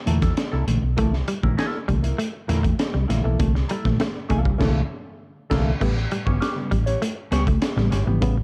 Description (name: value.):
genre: funk.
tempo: 100 BPM.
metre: 4/4.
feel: straight.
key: A mixolydian.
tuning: A4 = 440 Hz.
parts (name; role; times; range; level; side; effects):
hollow-body jazz guitar; accompaniment; 0.1-8.2 s; Bb3 to C#5; -33 LUFS; equal; wah.
reed electric piano; stabs; 0.1-8.4 s; A2 to B3; -30 LUFS; equal; overdrive, fast tremolo.
hollow-body short-scale fingered electric bass; bass; 0.1-8.4 s; G1 to E2; -25 LUFS; equal; none.
crunchy breakbeat drum kit; drums; 0.1-8.4 s; crash cymbal, hi-hat, kick drum, snare drum; -28 LUFS; equal; none.
semi-hollow electric guitar; riff; 1.0-8.4 s; E3 to A3; -31 LUFS; equal; tremolo.
room: small room ambience.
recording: dark, warm production.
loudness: -22 LUFS.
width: mono.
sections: 0.0-5.8 A section; 5.8-8.4 B section.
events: band accent 4.6-5.8.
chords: 0.0 C13; 5.8 A9.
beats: 0.38 | 0.98 1.59 2.19 2.79 | 3.40 4.00 4.60 5.21 | 5.81 6.41 7.01 7.62 | 8.22.